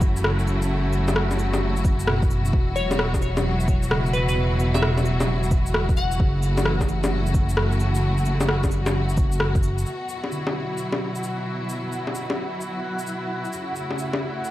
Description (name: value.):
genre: future garage.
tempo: 131 BPM.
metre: 4/4.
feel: swing 65% on 16ths.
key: unclear.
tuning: A4 = 441 Hz.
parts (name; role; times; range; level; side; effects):
tine electric piano; accompaniment; 0.0-13.5 s; B2 to E3; -29 LUFS; right 1 dB; overdrive, vintage 12-bit sampler grit, sidechain pumping, tape echo.
rich symphonic string section; sustained chords; 0.0-14.5 s; B2 to F#4; -27 LUFS; left 1 dB; sidechain pumping.
dark detuned saw bass; bass; 0.0-9.8 s; E1 to F#1; -24 LUFS; equal; sidechain pumping.
electronic cabasa, shaker, rim click and bongos; drums; 0.0-14.5 s; none; -27 LUFS; left 1 dB; overdrive.
electronic kick drum; drums; 0.0-9.6 s; none; -22 LUFS; equal; overdrive.
glassy wavetable pluck; melody; 2.8-6.3 s; B4 to F#5; -30 LUFS; left 1 dB; chorus, tape echo.
backwards swelling texture; texture; 9.9-14.5 s; F#5; -35 LUFS; right 2 dB; built-in reverb.
room: light reverb.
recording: vinyl crackle.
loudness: -20 LUFS.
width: side -15 dB against mid.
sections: 0.0-9.9 A section; 9.9-14.5 B section.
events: none.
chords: 0.0 F#m7; 2.5 Esus2; 6.2 F#m7; 9.9 Esus2; 13.5 F#m7.